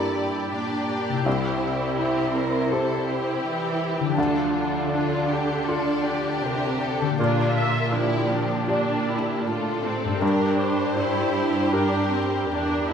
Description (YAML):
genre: cinematic, emotional film score for orchestra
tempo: 80 BPM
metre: 4/4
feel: rubato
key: unclear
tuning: A4 = 440 Hz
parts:
  - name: warm studio violin section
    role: melody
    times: 0.0-12.9 s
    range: G4 to D5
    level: -32 LUFS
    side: left 4 dB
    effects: none
  - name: warm symphonic violin section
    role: second line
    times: 0.0-12.9 s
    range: D4 to Bb4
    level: -29 LUFS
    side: left 2 dB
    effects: none
  - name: felt-muted upright piano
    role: accompaniment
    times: 0.0-12.9 s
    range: C2 to D5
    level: -26 LUFS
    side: equal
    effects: none
  - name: warm symphonic viola section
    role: accompaniment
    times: 0.0-12.9 s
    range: F3 to E5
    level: -29 LUFS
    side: right 2 dB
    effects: none
  - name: concert harp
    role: arpeggios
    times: 0.0-12.9 s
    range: G2 to A5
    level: -32 LUFS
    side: left 7 dB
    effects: none
  - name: warm symphonic cello section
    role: bass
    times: 0.0-12.9 s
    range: E2 to E3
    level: -29 LUFS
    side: right 4 dB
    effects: none
room: moderate scoring stage reverb, RT60 1.7 s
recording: none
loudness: -21 LUFS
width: side -7 dB against mid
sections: 0.0-12.9 A section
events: none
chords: 0.0 Gm; 1.3 C; 4.2 Dm; 7.2 Bb6; 10.2 Gm